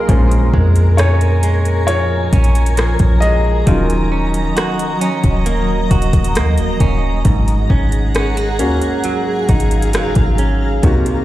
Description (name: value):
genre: contemporary R&B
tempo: 67 BPM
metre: 4/4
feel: straight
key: unclear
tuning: A4 = 439 Hz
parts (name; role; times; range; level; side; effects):
- warm baby grand piano; accompaniment; 0.0-11.2 s; Gb3 to Eb5; -21 LUFS; left 3 dB; none
- granular cloud pad; sustained chords; 0.0-11.2 s; Gb3 to Bb5; -22 LUFS; left 1 dB; built-in reverb
- direct-recorded clean electric guitar; arpeggios; 0.0-11.2 s; Ab2 to Gb4; -20 LUFS; right 4 dB; spring reverb, digital delay
- soft 808-style bass; bass; 0.1-11.2 s; Eb1 to F2; -15 LUFS; equal; none
- smooth R&B drum kit; drums; 0.1-11.2 s; hi-hat, kick drum, rim click; -16 LUFS; equal; overdrive
room: digital ambience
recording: played on a big sound system in a bare room, large studio reverb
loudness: -12 LUFS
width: side -15 dB against mid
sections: 0.0-11.2 A section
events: grand piano solo 0.0-11.2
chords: 0.1 Bbm7; 3.7 Ebm7; 7.3 Ab7sus4